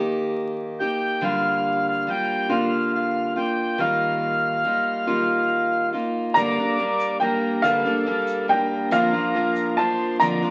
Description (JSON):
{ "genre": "acoustic folk duo or small band", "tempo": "47 BPM (dotted quarters)", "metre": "6/8", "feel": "straight", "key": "unclear", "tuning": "A4 = 440 Hz", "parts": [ { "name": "picked steel-string acoustic guitar", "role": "accompaniment", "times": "0.0-10.5 s", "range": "F2 to A4", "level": "-27 LUFS", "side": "equal", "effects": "none" }, { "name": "accordion", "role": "second line", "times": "0.8-10.5 s", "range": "A4 to G5", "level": "-27 LUFS", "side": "equal", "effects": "none" }, { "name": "bright upright piano", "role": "melody", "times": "6.3-10.5 s", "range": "F5 to Bb5", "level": "-24 LUFS", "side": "equal", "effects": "none" }, { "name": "electric guitar through a small old amp", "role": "arpeggios", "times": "6.4-10.5 s", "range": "F3 to D4", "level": "-32 LUFS", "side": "equal", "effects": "harmonic tremolo" }, { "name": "egg shaker", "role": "percussion", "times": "6.4-10.5 s", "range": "none", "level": "-54 LUFS", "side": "equal", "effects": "none" } ], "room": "wet small room reverb, RT60 0.5 s", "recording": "very old 78 rpm record, vinyl crackle", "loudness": "-23 LUFS", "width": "mono", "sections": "0.0-6.4 A section; 6.4-10.5 B section", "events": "accordion solo 0.0-6.4", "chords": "0.0 Eb; 1.2 Bb6/D; 3.8 Ebadd9; 6.4 Gmadd9; 8.9 Bb/F" }